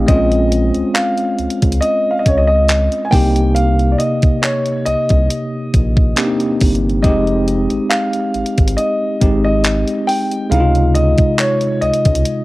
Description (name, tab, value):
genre	contemporary R&B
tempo	69 BPM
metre	4/4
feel	swing 54% on 16ths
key	F minor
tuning	A4 = 441 Hz
part	bell-like tine electric piano	accompaniment	0.0-12.4 s	C3 to F5	-18 LUFS	equal	medium stereo tremolo, cassette tape
part	round analog bass	bass	0.0-12.2 s	F1 to Db2	-16 LUFS	equal	none
part	dark concert grand piano	melody	0.1-12.4 s	Db5 to Ab5	-18 LUFS	equal	none
part	clean 12-bit digital drum machine	drums	0.1-12.4 s	handclaps, hi-hat, kick drum	-16 LUFS	equal	cassette tape
room	light reverb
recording	home recording on cassette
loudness	-12 LUFS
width	side -19 dB against mid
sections	0.0-12.4 A section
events	none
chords	0.1 Bbm9; 3.1 Cm7; 7.0 Fm9; 10.5 Dbmaj9